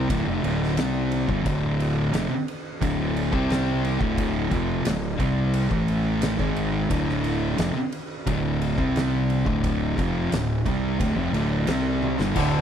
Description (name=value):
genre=stoner and doom metal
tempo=88 BPM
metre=4/4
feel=straight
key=D minor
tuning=A4 = 439 Hz
part: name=thick fuzz guitar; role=riff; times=0.0-12.6 s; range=D2 to C4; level=-26 LUFS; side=left 9 dB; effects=distortion
part: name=thick fuzz guitar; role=riff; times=0.0-12.6 s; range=D2 to C4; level=-26 LUFS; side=right 8 dB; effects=distortion
part: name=fuzz fingered electric bass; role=bass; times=0.0-12.6 s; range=D1 to C2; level=-29 LUFS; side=equal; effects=overdrive
part: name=oversized low-tuned drum kit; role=drums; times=0.1-12.5 s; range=crash cymbal, kick drum, ride cymbal, snare drum, toms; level=-29 LUFS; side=equal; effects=none
part: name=overdriven semi-hollow guitar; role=riff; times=12.4-12.6 s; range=D2 to D3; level=-24 LUFS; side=equal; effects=none
room=little or no reverb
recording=none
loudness=-22 LUFS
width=side -8 dB against mid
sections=0.0-12.4 A section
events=drum fill 12.0-12.4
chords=0.0 Dm; 3.3 C5; 4.0 Dm; 5.7 A5; 6.4 Dm; 8.8 C5; 9.5 Dm